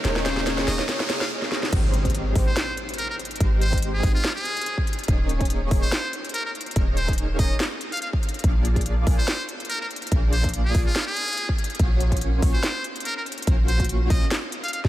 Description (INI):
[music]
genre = future bass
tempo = 143 BPM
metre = 4/4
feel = swing 54% on 16ths, half-time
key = Ab major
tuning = A4 = 436 Hz
[part]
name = warm studio string section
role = sustained chords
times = 0.0-1.7 s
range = Db3 to Eb4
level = -41 LUFS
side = left 1 dB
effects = none
[part]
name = soft supersaw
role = riff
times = 0.0-14.9 s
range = Ab3 to F5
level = -31 LUFS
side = equal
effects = analog chorus, sidechain pumping
[part]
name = warm 808-style bass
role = bass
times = 0.0-14.9 s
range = Eb1 to Bb1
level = -24 LUFS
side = equal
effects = sidechain pumping
[part]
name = trap drum kit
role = drums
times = 0.0-14.9 s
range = crash cymbal, hi-hat, snare drum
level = -30 LUFS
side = equal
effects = none
[part]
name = riser and impact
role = sound effects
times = 0.0-3.4 s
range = none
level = -34 LUFS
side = equal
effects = none
[part]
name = trumpet with metal mute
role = melody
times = 0.3-14.8 s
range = F4 to F5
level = -29 LUFS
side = equal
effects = sidechain pumping, analog delay
[part]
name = electronic kick drum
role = drums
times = 1.7-14.9 s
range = none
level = -23 LUFS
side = equal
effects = overdrive
[sound]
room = light reverb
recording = none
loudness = -21 LUFS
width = side -15 dB against mid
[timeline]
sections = 0.0-1.7 A section; 1.7-14.9 B section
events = build-up 0.0-1.7; drum fill 0.0-1.3, 1.4-1.7; riser 0.0-1.3; drop 1.7-14.9; impact 1.7-3.4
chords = 0.0 Eb7sus4; 1.7 Abmaj7; 5.1 Eb7sus4; 8.4 Bb7; 11.8 Gbmaj7/Bb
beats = | 0.05 0.47 0.89 1.31 | 1.73 2.15 2.56 2.98 | 3.40 3.82 4.24 4.66 | 5.08 5.50 5.92 6.34 | 6.76 7.18 7.60 8.02 | 8.44 8.86 9.28 9.70 | 10.12 10.54 10.96 11.38 | 11.80 12.21 12.63 13.05 | 13.47 13.89 14.31 14.73